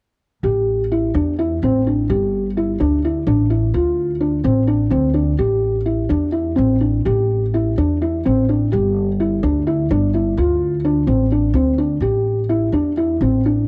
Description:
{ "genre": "contemporary instrumental, chamber music in an uneven meter", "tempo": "254 BPM (eighths)", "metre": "7/8", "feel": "straight", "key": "A minor", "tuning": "A4 = 440 Hz", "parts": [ { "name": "felt-muted upright piano", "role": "arpeggios", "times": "0.4-13.6 s", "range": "C4 to G4", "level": "-20 LUFS", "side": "equal", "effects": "none" }, { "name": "upright bass", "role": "bass", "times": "0.4-13.7 s", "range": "G1 to E2", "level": "-22 LUFS", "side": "equal", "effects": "transformer saturation" } ], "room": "moderate spring reverb, RT60 2.9 s", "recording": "home recording on cassette", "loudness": "-18 LUFS", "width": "mono", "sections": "0.4-13.7 A section", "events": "none", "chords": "0.4 A7(no3); 2.1 G5; 3.7 Dm7; 5.4 A7(no3); 8.7 G5; 10.4 Dm7; 12.0 A7(no3)" }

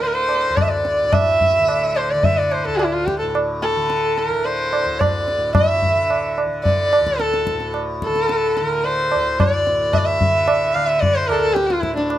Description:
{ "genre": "indian classical, Hindustani", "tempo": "109 BPM", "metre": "4/4", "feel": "straight", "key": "unclear", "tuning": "A4 = 441 Hz", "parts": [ { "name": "rich sarangi", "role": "melody", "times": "0.0-12.1 s", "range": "D4 to F5", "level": "-18 LUFS", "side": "equal", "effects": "none" }, { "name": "tanpura", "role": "drone", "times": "0.0-12.2 s", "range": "D2 to D3", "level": "-27 LUFS", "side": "left 1 dB", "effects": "none" }, { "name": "tabla", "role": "percussion", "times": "0.0-12.2 s", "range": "none", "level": "-21 LUFS", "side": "equal", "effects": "none" } ], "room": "light reverb", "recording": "none", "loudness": "-16 LUFS", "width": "side -12 dB against mid", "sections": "0.0-12.2 A section", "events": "speeding up 0.0-12.2", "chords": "none" }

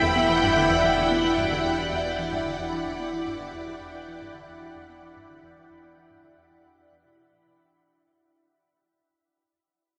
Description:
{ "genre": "ambient, sequencer-driven space music", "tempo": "111 BPM", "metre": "4/4", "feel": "straight", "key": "E minor", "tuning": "A4 = 441 Hz", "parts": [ { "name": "string machine, full ensemble", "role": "sustained chords", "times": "0.0-7.6 s", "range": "E4 to B5", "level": "-26 LUFS", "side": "equal", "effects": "phaser, ensemble chorus" }, { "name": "hollow square pluck", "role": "riff", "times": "0.0-7.5 s", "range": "E2 to B3", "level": "-35 LUFS", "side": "equal", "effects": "chorus, phaser, delay" }, { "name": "fat analog bass", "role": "bass", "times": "0.0-7.6 s", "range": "E1", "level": "-42 LUFS", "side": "equal", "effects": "none" }, { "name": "wind-like tuned noise texture", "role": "texture", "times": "0.0-7.6 s", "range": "E5", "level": "-32 LUFS", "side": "equal", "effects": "built-in reverb, subtle chorus" } ], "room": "wet huge ambient reverb, RT60 7.0 s", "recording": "dreamy mix soaked in reverb, lossy compression artefacts", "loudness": "-24 LUFS", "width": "mono", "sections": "0.0-7.6 A section", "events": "fade-out on synth arpeggio sound 0.0-7.6; fade-out on analog synth bass 0.0-7.6; fade-out 0.0-7.6", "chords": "0.0 Em7" }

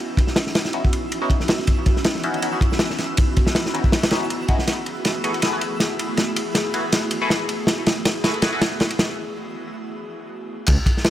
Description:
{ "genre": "drum and bass, jungle", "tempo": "160 BPM", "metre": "4/4", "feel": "swing 55% on 16ths", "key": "unclear", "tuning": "A4 = 442 Hz", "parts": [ { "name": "airy breathy pad", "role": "sustained chords", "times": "0.0-10.6 s", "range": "A3 to G#4", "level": "-28 LUFS", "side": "equal", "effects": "chorus" }, { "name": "twinkling granular texture", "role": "texture", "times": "0.0-9.2 s", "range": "E3 to E6", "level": "-34 LUFS", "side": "equal", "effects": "built-in reverb" }, { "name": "crunchy breakbeat drum kit", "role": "drums", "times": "0.2-11.1 s", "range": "crash cymbal, kick drum, ride cymbal, snare drum", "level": "-20 LUFS", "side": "equal", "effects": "none" }, { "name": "band-passed chord stab", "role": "stabs", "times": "0.7-8.6 s", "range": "B3 to B4", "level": "-28 LUFS", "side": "left 1 dB", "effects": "phaser, dub echo" }, { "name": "dark detuned saw bass", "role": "bass", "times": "10.7-10.8 s", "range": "C#2", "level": "-19 LUFS", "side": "equal", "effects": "none" } ], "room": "light reverb", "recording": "none", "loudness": "-18 LUFS", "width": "side -12 dB against mid", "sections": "0.0-10.7 A section", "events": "build-up 0.0-10.7; drum fill 4.7-9.2; break 9.2-10.7", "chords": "0.0 C#m11; 4.7 F#m11" }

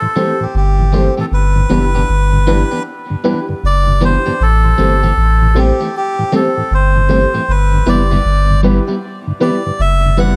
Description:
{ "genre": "reggae", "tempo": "78 BPM", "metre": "4/4", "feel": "swing 63% on 16ths", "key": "unclear", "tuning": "A4 = 440 Hz", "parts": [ { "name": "melodica", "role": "melody", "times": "0.0-10.4 s", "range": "G4 to F#5", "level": "-20 LUFS", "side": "equal", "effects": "dub echo" }, { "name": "mellow tonewheel organ", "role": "accompaniment", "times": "0.0-10.3 s", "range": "G2 to C4", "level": "-22 LUFS", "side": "equal", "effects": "slow rotary speaker" }, { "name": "electric guitar at the edge of break-up", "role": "accompaniment", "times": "0.2-10.3 s", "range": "E3 to G4", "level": "-23 LUFS", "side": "equal", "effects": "spring reverb, dub echo" }, { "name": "dark concert grand piano", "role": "stabs", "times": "0.2-10.4 s", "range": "E4 to C5", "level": "-21 LUFS", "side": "equal", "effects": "none" }, { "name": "warm sub bass", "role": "bass", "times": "0.5-10.3 s", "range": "F#1 to A1", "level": "-15 LUFS", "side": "equal", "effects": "none" } ], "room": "light reverb", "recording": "none", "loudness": "-14 LUFS", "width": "mono", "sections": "0.0-10.4 A section", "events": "none", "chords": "0.0 Am7; 1.3 G6; 4.4 Am7; 7.5 G6" }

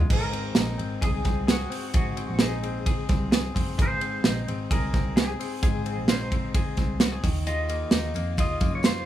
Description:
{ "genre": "jangly indie pop", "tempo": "130 BPM", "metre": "4/4", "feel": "straight", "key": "unclear", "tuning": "A4 = 440 Hz", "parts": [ { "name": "direct-recorded clean electric guitar", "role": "arpeggios", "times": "0.0-9.1 s", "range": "Ab2 to Ab4", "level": "-33 LUFS", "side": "left 5 dB", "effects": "analog delay" }, { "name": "vintage muted picked electric bass", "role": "bass", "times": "0.0-9.0 s", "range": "Gb1 to Gb2", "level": "-30 LUFS", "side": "equal", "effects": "none" }, { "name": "clean electric guitar", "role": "melody", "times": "0.1-9.1 s", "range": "Gb4 to Eb5", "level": "-33 LUFS", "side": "equal", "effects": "tremolo" }, { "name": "modern studio drum kit", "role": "drums", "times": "0.1-9.0 s", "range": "crash cymbal, hi-hat, kick drum, ride cymbal, snare drum", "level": "-24 LUFS", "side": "right 1 dB", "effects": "none" }, { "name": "tambourine", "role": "percussion", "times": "7.5-8.9 s", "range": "none", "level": "-50 LUFS", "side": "right 4 dB", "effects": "none" } ], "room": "light reverb", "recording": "rough home demo mix, small room ambience", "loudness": "-23 LUFS", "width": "side -12 dB against mid", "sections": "0.1-9.1 A section", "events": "none", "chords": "0.1 Ab; 7.2 Ebmadd9" }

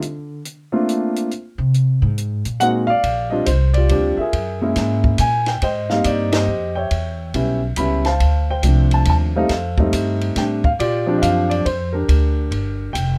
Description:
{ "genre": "jazz piano trio", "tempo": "139 BPM", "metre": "3/4", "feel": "swing 65% on 8ths", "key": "Bb major", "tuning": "A4 = 440 Hz", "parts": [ { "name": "upright bass", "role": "bass", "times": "0.0-13.2 s", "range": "F1 to D3", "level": "-21 LUFS", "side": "equal", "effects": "none" }, { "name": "compact cocktail drum kit", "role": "drums", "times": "0.0-13.1 s", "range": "hi-hat, kick drum, ride cymbal, snare drum", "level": "-27 LUFS", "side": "equal", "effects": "none" }, { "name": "warm concert grand piano", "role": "melody", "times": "0.7-13.2 s", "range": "F3 to B5", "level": "-22 LUFS", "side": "equal", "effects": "none" } ], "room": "light reverb", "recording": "none", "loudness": "-19 LUFS", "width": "mono", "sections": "0.0-3.0 A section; 3.0-13.2 B section", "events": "upright bass solo 0.0-3.0; band accent 6.3", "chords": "0.5 Bbmaj9; 1.7 Ab9; 3.0 Bb6; 4.3 Gb9; 5.6 Abmaj7; 6.9 A9 (rootless); 8.2 Dm7; 9.5 F7; 10.8 Bb6" }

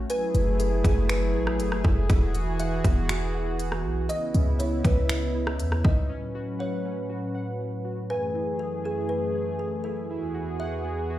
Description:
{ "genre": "hip hop, atmospheric cloud-rap", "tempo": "120 BPM", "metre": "4/4", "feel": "half-time", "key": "unclear", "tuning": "A4 = 439 Hz", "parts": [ { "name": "warm analog pad", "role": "sustained chords", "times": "0.0-11.2 s", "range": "E2 to B4", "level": "-30 LUFS", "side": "equal", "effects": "chorus, sidechain pumping" }, { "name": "warbly lo-fi synth keys", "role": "arpeggios", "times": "0.0-11.2 s", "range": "B3 to G#5", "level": "-37 LUFS", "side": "right 1 dB", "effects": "chorus, tape echo" }, { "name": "clean 808-style bass", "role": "bass", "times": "0.0-6.1 s", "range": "E1 to E2", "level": "-26 LUFS", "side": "equal", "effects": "none" }, { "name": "kalimba", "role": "melody", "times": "0.1-11.2 s", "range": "G#4 to E5", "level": "-32 LUFS", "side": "equal", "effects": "tape echo" }, { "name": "trap drum kit", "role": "drums", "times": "0.1-6.0 s", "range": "finger snaps, hi-hat, kick drum, rim click", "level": "-25 LUFS", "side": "equal", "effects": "none" } ], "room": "little or no reverb", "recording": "played on a big sound system in a bare room, stone room reverb", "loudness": "-24 LUFS", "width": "side -14 dB against mid", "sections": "0.0-6.1 A section; 6.1-11.2 B section", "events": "none", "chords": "0.1 F#m9; 2.1 Eadd9; 4.1 C#m9; 6.1 A69; 8.1 F#m9; 10.1 Eadd9" }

